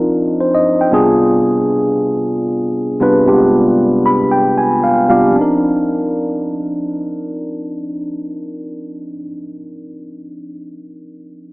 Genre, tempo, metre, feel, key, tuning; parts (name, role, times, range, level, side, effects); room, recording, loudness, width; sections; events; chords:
amapiano; 115 BPM; 4/4; swing 55% on 16ths; C minor; A4 = 440 Hz
mellow tine electric piano; accompaniment; 0.0-11.5 s; C3 to B5; -13 LUFS; equal; wide subtle chorus
light reverb, digital ambience; small speaker sound; -12 LUFS; side -23 dB against mid
0.0-5.4 A section; 5.4-9.5 B section
tine electric piano fill 3.8-5.4
0.0 Cm11; 0.9 G7b9/C; 5.4 Cm11